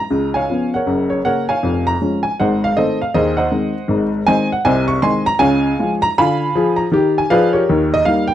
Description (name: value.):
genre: jazz, stride piano.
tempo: 158 BPM.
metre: 4/4.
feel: swing 61% on 8ths.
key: unclear.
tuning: A4 = 440 Hz.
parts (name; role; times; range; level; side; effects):
warm upright piano; solo; 0.0-8.3 s; F1 to Db6; -14 LUFS; equal; slapback echo.
room: small room ambience.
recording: dry, close 1970s-style studio recording.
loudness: -14 LUFS.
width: side -11 dB against mid.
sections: 0.0-8.3 A section.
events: none.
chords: 0.1 Db7; 0.9 Gb; 1.6 Db/F; 2.4 Ab; 3.1 Ab7/Eb; 4.6 Ab/C; 5.4 Db; 6.2 Ddim7; 7.7 Eb.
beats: | 0.10 0.48 0.86 1.24 | 1.62 2.00 2.37 2.75 | 3.13 3.51 3.89 4.26 | 4.64 5.02 5.40 5.78 | 6.16 6.54 6.92 7.29 | 7.67 8.05.